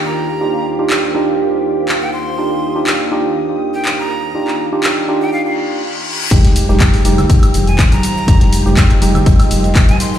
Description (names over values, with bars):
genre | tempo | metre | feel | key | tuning
deep house | 122 BPM | 4/4 | swing 54% on 16ths | F dorian | A4 = 441 Hz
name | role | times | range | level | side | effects
soft string machine | sustained chords | 0.0-10.2 s | Eb3 to Eb6 | -26 LUFS | equal | phaser, ensemble chorus, sidechain pumping
percussive organ stab | stabs | 0.0-10.2 s | Ab3 to G4 | -18 LUFS | right 2 dB | chorus, vintage 12-bit sampler grit, sidechain pumping, ping-pong delay
deep dark ambient pad | texture | 0.0-10.2 s | Eb3 to F5 | -24 LUFS | right 3 dB | chorus, built-in reverb, sidechain pumping
breathy bright jazz flute | melody | 0.1-10.2 s | F5 to C6 | -24 LUFS | right 1 dB | ping-pong delay
punchy analog drum machine | drums | 0.9-10.2 s | crash cymbal, handclaps, hi-hat, shaker, woodblock | -20 LUFS | left 1 dB | none
reverse cymbal and sub drop | sound effects | 5.5-8.3 s | none | -21 LUFS | left 1 dB | none
rubbery square bass | bass | 6.3-10.0 s | F1 | -15 LUFS | left 1 dB | sidechain pumping
electronic kick drum | drums | 6.3-9.9 s | none | -10 LUFS | left 1 dB | none
warm soul drum kit | drums | 6.3-10.2 s | ride cymbal, snare drum | -32 LUFS | right 4 dB | high-pass filter on cymbals, high-pass filter on snare, high-pass filter on room
congas | percussion | 6.3-10.0 s | none | -21 LUFS | equal | none
room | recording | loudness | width
light reverb, small room reverb | played on a big sound system in a bare room, stone room reverb | -11 LUFS | side -10 dB against mid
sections
0.0-6.3 A section; 6.3-10.2 B section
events
reverse cymbal 5.5-6.3; drop 6.3-10.2; impact 6.3-8.3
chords
0.0 Ebmaj9; 6.3 Fm9